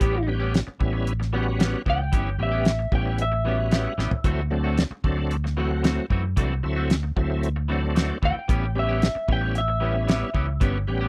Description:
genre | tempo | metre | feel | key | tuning
straight-eighth soul blues | 113 BPM | 4/4 | straight | A mixolydian | A4 = 440 Hz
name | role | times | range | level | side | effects
electric guitar through a small old amp | melody | 0.0-4.8, 8.3-11.1 s | G4 to G5 | -30 LUFS | equal | analog chorus, slapback echo
bright tonewheel organ | accompaniment | 0.0-11.1 s | F#3 to G4 | -31 LUFS | equal | overdrive, chorus vibrato, slow rotary speaker
electric guitar through a small old amp | stabs | 0.0-11.1 s | E3 to G4 | -35 LUFS | equal | none
fingered electric bass | bass | 0.0-11.1 s | G1 to F#2 | -28 LUFS | equal | none
cloth-damped thuddy drum kit | drums | 0.0-10.7 s | hi-hat, kick drum, snare drum, toms | -25 LUFS | equal | none
room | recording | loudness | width
little or no reverb | dry, close 1970s-style studio recording | -24 LUFS | mono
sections
0.0-11.1 A section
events
drum fill 4.0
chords
0.0 A9; 4.2 D9; 8.5 A9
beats
| 0.01 0.54 1.07 1.60 | 2.13 2.66 3.19 3.72 | 4.25 4.78 5.31 5.84 | 6.37 6.90 7.43 7.96 | 8.49 9.02 9.55 10.08 | 10.61

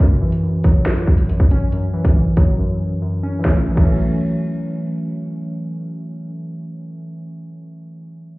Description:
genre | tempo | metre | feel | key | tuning
hip hop, drill | 139 BPM | 4/4 | half-time | F# minor | A4 = 440 Hz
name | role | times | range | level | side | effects
warbly lo-fi synth keys | accompaniment | 0.0-8.4 s | F#2 to C#4 | -19 LUFS | equal | chorus
drill drum kit | drums | 0.0-3.9 s | crash cymbal, finger snaps, hi-hat, kick drum, snare drum | -15 LUFS | equal | vintage 12-bit sampler grit
room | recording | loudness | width
light reverb | heard muffled through a wall, club reverb, EQ | -16 LUFS | side -21 dB against mid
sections
0.0-3.4 A section; 3.4-6.9 B section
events
break 2.6-3.4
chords
0.0 F#5; 3.4 F#m7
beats
| 0.00 0.43 0.86 1.29 | 1.72 2.15 2.58 3.02 | 3.45 3.88 4.31 4.74 | 5.17 5.61 6.04 6.47

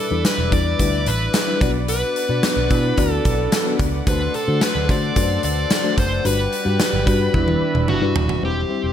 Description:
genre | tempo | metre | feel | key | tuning
1980s-style pop | 110 BPM | 4/4 | straight | E minor | A4 = 439 Hz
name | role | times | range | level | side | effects
dark smooth lead guitar | melody | 0.0-8.9 s | F#4 to D5 | -23 LUFS | equal | overdrive, digital delay
FM electric piano with tremolo | accompaniment | 0.0-8.9 s | G3 to D5 | -24 LUFS | left 6 dB | none
brassy analog pad | sustained chords | 0.0-8.9 s | G3 to D6 | -30 LUFS | equal | chorus
vintage muted picked electric bass | bass | 0.1-8.9 s | D#1 to D3 | -23 LUFS | right 1 dB | none
big rock drum kit | drums | 0.2-8.4 s | hi-hat, kick drum, snare drum, tambourine, toms | -21 LUFS | right 1 dB | none
marimba with medium mallets | second line | 2.4-8.4 s | C#4 to G4 | -30 LUFS | right 5 dB | digital delay
room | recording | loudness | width
light reverb | none | -17 LUFS | side -10 dB against mid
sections
0.0-8.4 A section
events
drum fill 7.3-8.4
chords
0.0 Em7; 1.6 Bm; 4.1 D7; 6.2 Gmaj7; 7.3 Em7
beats
0.25 0.80 1.34 | 1.89 2.43 2.98 3.52 | 4.07 4.61 5.16 5.70 | 6.25 6.79 7.34 7.88 | 8.43

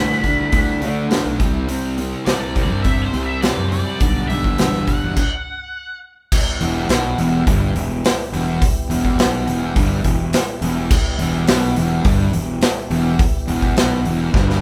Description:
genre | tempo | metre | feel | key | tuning
blues rock power trio and southern rock | 104 BPM | 4/4 | straight | E minor | A4 = 440 Hz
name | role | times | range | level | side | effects
octave-fuzz lead guitar | melody | 0.0-6.0 s | C5 to B5 | -27 LUFS | equal | wah, distortion, slapback echo
mellow tonewheel organ | sustained chords | 0.0-14.6 s | G3 to A4 | -34 LUFS | equal | slow rotary speaker
fuzz guitar | riff | 0.0-14.6 s | E2 to D4 | -23 LUFS | equal | distortion
fuzz fingered electric bass | bass | 0.0-14.6 s | E1 to D3 | -26 LUFS | equal | overdrive
big rock drum kit | drums | 0.1-14.6 s | crash cymbal, hi-hat, kick drum, snare drum | -21 LUFS | equal | none
room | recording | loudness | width
light reverb | band playing live in one room | -18 LUFS | mono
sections
0.0-6.3 A section; 6.3-14.6 B section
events
stop 5.2-6.3; drum fill 14.3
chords
0.0 D; 1.4 C; 4.0 G/B; 5.2 N.C.; 6.3 Em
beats
0.53 1.11 | 1.69 2.27 2.85 3.42 | 4.00 4.58 5.16 5.74 | 6.31 6.89 7.46 8.04 | 8.61 9.19 9.76 10.33 | 10.91 11.48 12.05 12.62 | 13.20 13.77 14.34

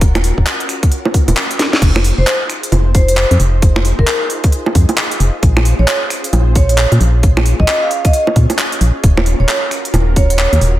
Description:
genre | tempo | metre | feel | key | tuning
UK garage, two-step garage | 133 BPM | 4/4 | swing 62% on 16ths | Eb dorian | A4 = 440 Hz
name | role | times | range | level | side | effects
soft string machine | sustained chords | 0.0-10.8 s | Db4 to Db5 | -26 LUFS | equal | ensemble chorus, sidechain pumping
organ-like FM bass | bass | 0.0-10.8 s | Eb1 to Bb2 | -12 LUFS | equal | sidechain pumping
electronic kick drum | drums | 0.0-10.3 s | none | -11 LUFS | equal | none
garage drum kit | drums | 0.0-10.7 s | bongos, crash cymbal, finger snaps, handclaps, hi-hat, snare drum | -17 LUFS | right 1 dB | none
vibraphone with medium hard mallets | melody | 2.2-10.5 s | Bb4 to F5 | -19 LUFS | right 1 dB | dub echo
room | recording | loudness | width
digital ambience | none | -11 LUFS | side -14 dB against mid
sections
0.0-10.8 A section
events
drum fill 1.6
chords
0.0 Ebm7; 1.8 Fm7; 5.4 Bbm9; 9.0 Ebm7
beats
| 0.01 0.47 0.92 1.37 | 1.82 2.27 2.72 3.17 | 3.62 4.08 4.53 4.98 | 5.43 5.88 6.33 6.78 | 7.23 7.68 8.13 8.59 | 9.04 9.49 9.94 10.39

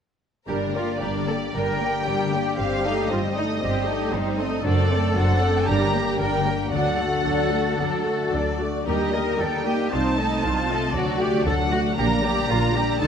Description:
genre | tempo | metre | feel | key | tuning
classical, dramatic, fast romantic movement for symphony orchestra | 115 BPM | 4/4 | rubato | G minor | A4 = 440 Hz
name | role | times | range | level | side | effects
warm symphonic violin section | melody | 0.5-13.1 s | Bb4 to Bb5 | -28 LUFS | left 1 dB | none
warm symphonic violin section | second line | 0.5-13.1 s | F#4 to F#5 | -30 LUFS | left 1 dB | none
warm symphonic viola section | accompaniment | 0.5-13.1 s | Eb3 to G4 | -26 LUFS | right 2 dB | none
concert harp | arpeggios | 0.5-13.1 s | F#2 to D5 | -28 LUFS | left 8 dB | none
rich symphonic cello section | bass | 0.5-13.1 s | C4 to Bb4 | -28 LUFS | equal | none
rich symphonic double bass section | bass | 0.5-13.1 s | F#1 to Eb2 | -27 LUFS | right 2 dB | none
room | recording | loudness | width
moderate concert hall reverb, RT60 2.0 s | none | -20 LUFS | side -7 dB against mid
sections
0.5-13.1 A section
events
none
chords
0.5 Gm; 2.6 Am7b5/G; 4.6 D7/F#; 5.7 Gm; 6.7 D; 8.9 Eb; 9.9 Adim/C; 11.0 D; 12.0 Gm/Bb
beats
| 0.47 1.00 1.54 2.07 | 2.59 3.11 3.62 4.13 | 4.65 5.16 5.67 6.20 | 6.72 7.26 7.80 8.33 | 8.87 9.40 9.92 10.44 | 10.95 11.47 11.98 12.50 | 13.01

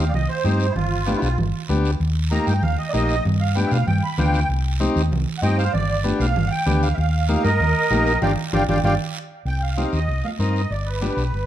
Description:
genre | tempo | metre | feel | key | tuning
latin, cumbia | 193 BPM | 4/4 | straight | C minor | A4 = 441 Hz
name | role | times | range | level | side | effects
musette accordion | melody | 0.0-11.5 s | E4 to B5 | -24 LUFS | right 3 dB | tape echo
combo organ | accompaniment | 0.0-11.2 s | Bb3 to Bb4 | -25 LUFS | left 3 dB | none
hollow-body short-scale fingered electric bass | bass | 0.0-11.5 s | G1 to B2 | -21 LUFS | equal | none
congas | percussion | 0.1-11.5 s | none | -27 LUFS | right 3 dB | none
guiro | percussion | 0.1-11.5 s | none | -37 LUFS | right 6 dB | none
room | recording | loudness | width
light reverb | dark, warm production | -18 LUFS | side -12 dB against mid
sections
0.0-9.5 A section; 9.5-11.5 B section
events
accordion solo 0.0-9.5; band accent 8.2-9.5; drum fill 8.5-9.5; transistor combo organ fill 8.5-9.5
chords
0.0 Cm; 0.8 G7; 2.0 Eb; 3.2 G7; 4.5 Cm; 5.7 G7; 7.0 Eb; 8.2 G5; 9.5 Cm; 10.7 G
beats
0.14 0.45 | 0.76 1.07 1.38 1.69 | 2.00 2.32 2.63 2.94 | 3.25 3.56 3.87 4.18 | 4.49 4.80 5.12 5.43 | 5.74 6.05 6.36 6.67 | 6.98 7.29 7.60 7.91 | 8.22 8.53 8.85 9.16 | 9.47 9.78 10.09 10.40 | 10.71 11.03 11.34

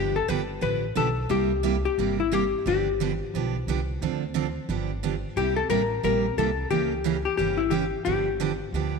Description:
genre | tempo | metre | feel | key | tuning
country, western swing | 178 BPM | 4/4 | swing 62% on 8ths | G mixolydian | A4 = 440 Hz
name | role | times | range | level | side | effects
hollow-body jazz guitar | melody | 0.0-9.0 s | E4 to B4 | -26 LUFS | left 8 dB | none
picked steel-string acoustic guitar | accompaniment | 0.0-9.0 s | C3 to A4 | -28 LUFS | right 11 dB | none
upright bass | bass | 0.0-9.0 s | G1 to D2 | -31 LUFS | right 1 dB | none
room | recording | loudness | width
moderate echo chamber reverb, RT60 2.3 s | 1960s-style stereo with parts hard left and right | -23 LUFS | side -4 dB against mid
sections
0.0-9.0 A section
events
none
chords
0.0 G9; 1.3 C7; 2.7 G7; 4.0 Dm7; 4.7 G7; 5.4 C7; 6.7 C#dim7; 8.1 G7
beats
0.29 0.62 0.96 | 1.30 1.64 1.98 2.32 | 2.65 2.99 3.33 3.67 | 4.01 4.34 4.68 5.02 | 5.36 5.70 6.03 6.37 | 6.71 7.05 7.38 7.72 | 8.06 8.40 8.73

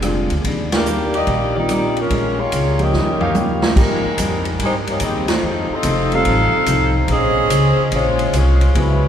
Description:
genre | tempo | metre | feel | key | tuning
jazz, big band swing | 144 BPM | 4/4 | swing 67% on 8ths | Eb major, Ab major from 3.8 s | A4 = 441 Hz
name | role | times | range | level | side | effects
picked steel-string acoustic guitar | accompaniment | 0.0-9.1 s | Ab2 to C5 | -25 LUFS | left 2 dB | none
warm grand piano | accompaniment | 0.0-9.0 s | D3 to A4 | -26 LUFS | right 1 dB | none
upright bass | bass | 0.0-9.1 s | F1 to Ab2 | -19 LUFS | equal | none
swinging big-band drum kit | drums | 0.0-8.9 s | crash cymbal, hi-hat, kick drum, ride cymbal, rim click, snare drum, toms | -22 LUFS | equal | none
warm saxophone section | melody | 0.8-9.1 s | Eb3 to F5 | -19 LUFS | left 1 dB | none
mellow trumpet section | stabs | 3.2-3.7 s | Eb4 to F5 | -30 LUFS | left 1 dB | none
room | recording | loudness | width
wet cathedral reverb, RT60 4.2 s | recorded in a church or concert hall | -14 LUFS | side -9 dB against mid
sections
0.0-3.8 A section; 3.8-9.1 B section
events
band accent 0.6, 5.2; drum fill 2.9-3.8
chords
0.4 Ebmaj7; 2.1 Bbm7; 2.9 Eb9; 3.8 Abmaj7; 5.4 F7; 7.1 Bbm9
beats
0.02 | 0.43 0.85 1.26 1.68 | 2.10 2.51 2.93 3.34 | 3.76 4.17 4.59 5.00 | 5.42 5.83 6.25 6.67 | 7.08 7.50 7.91 8.33 | 8.74

